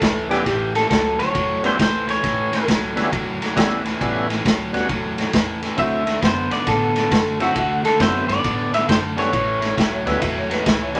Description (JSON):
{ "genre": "electric blues shuffle", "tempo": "135 BPM", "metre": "4/4", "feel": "swing 65% on 8ths", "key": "A mixolydian", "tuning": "A4 = 440 Hz", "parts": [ { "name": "electric guitar through a small old amp", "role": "melody", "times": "0.0-2.6, 5.8-9.7 s", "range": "F#4 to E5", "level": "-23 LUFS", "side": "equal", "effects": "none" }, { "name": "crunchy overdriven guitar", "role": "riff", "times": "0.0-11.0 s", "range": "A2 to B3", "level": "-27 LUFS", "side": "equal", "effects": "none" }, { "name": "upright bass", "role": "bass", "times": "0.0-11.0 s", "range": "A1 to A2", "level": "-34 LUFS", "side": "equal", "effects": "none" }, { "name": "vintage drum kit", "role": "drums", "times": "0.0-11.0 s", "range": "kick drum, ride cymbal, snare drum", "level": "-24 LUFS", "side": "equal", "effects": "none" }, { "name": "overdriven tonewheel organ", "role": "accompaniment", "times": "0.3-11.0 s", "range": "F#3 to F#4", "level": "-26 LUFS", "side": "equal", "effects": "slow rotary speaker" }, { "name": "clear upright piano", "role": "second line", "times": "9.8-11.0 s", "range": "B4 to E5", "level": "-29 LUFS", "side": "equal", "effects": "none" } ], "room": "moderate studio reverb, RT60 0.7 s", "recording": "none", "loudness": "-20 LUFS", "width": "mono", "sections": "0.0-11.0 A section", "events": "none", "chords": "0.0 A9; 5.8 D9; 9.3 A9" }